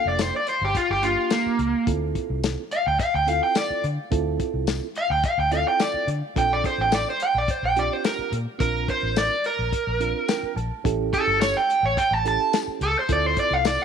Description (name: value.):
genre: straight-eighth soul blues.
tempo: 107 BPM.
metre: 4/4.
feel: straight.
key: D minor.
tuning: A4 = 440 Hz.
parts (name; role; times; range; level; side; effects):
crunchy overdriven guitar; melody; 0.0-13.8 s; Bb3 to A5; -22 LUFS; right 1 dB; none.
mellow reed electric piano; accompaniment; 0.0-13.8 s; Bb3 to A5; -30 LUFS; right 13 dB; harmonic tremolo.
vintage muted fingered electric bass; bass; 0.1-13.8 s; F1 to D3; -28 LUFS; left 1 dB; none.
warm soul drum kit; drums; 0.2-13.8 s; hi-hat, kick drum, snare drum, tambourine; -27 LUFS; left 5 dB; none.
room: light reverb, studio reverb.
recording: 1960s-style stereo.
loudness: -21 LUFS.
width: side -7 dB against mid.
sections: 0.0-13.8 A section.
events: overdriven electric guitar solo 0.0-13.8; reed electric piano fill 10.0-10.8.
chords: 0.0 Gm7; 1.9 Dm7; 6.4 Bbmaj7; 10.8 A7; 13.1 Dm7.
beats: 0.19 0.75 1.31 | 1.87 2.44 3.00 3.56 | 4.12 4.68 5.24 5.80 | 6.36 6.92 7.49 8.05 | 8.61 9.17 9.73 10.29 | 10.85 11.41 11.97 12.53 | 13.09 13.65.